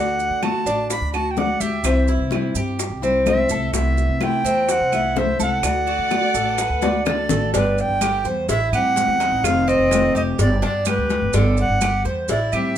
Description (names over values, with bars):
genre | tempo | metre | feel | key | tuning
latin, Cuban son and guajira | 126 BPM | 4/4 | straight | G major | A4 = 439 Hz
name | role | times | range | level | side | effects
bright tenor recorder | melody | 0.0-12.8 s | A4 to B5 | -22 LUFS | right 2 dB | none
nylon-string guitar | accompaniment | 0.0-12.8 s | C3 to G4 | -26 LUFS | left 3 dB | none
Cuban tres | arpeggios | 0.0-12.8 s | C4 to D5 | -24 LUFS | right 1 dB | none
upright bass | bass | 0.0-12.8 s | F1 to D3 | -24 LUFS | equal | none
bongos and cowbell | percussion | 0.2-12.5 s | none | -28 LUFS | left 5 dB | none
congas | percussion | 0.2-12.8 s | none | -29 LUFS | left 5 dB | none
maracas | percussion | 0.2-12.8 s | none | -31 LUFS | right 10 dB | none
claves | percussion | 0.4-12.8 s | none | -31 LUFS | right 10 dB | none
rich studio violin section | second line | 5.9-7.5 s | A4 to D5 | -28 LUFS | equal | none
room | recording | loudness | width
moderate large studio reverb, RT60 0.9 s | minimal, uncompressed stereo recording | -17 LUFS | side -10 dB against mid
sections
0.0-7.5 A section; 7.5-12.8 B section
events
drum fill 6.8-7.5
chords
0.0 D; 1.8 C; 3.7 Amadd9/C; 5.6 D; 7.5 G; 8.5 Am7; 9.4 F7; 10.4 G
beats
0.43 0.90 1.37 | 1.84 2.32 2.79 3.26 | 3.74 4.21 4.69 5.16 | 5.64 6.11 6.59 7.06 | 7.54 8.01 8.49 8.96 | 9.44 9.91 10.39 10.86 | 11.34 11.81 12.29 12.76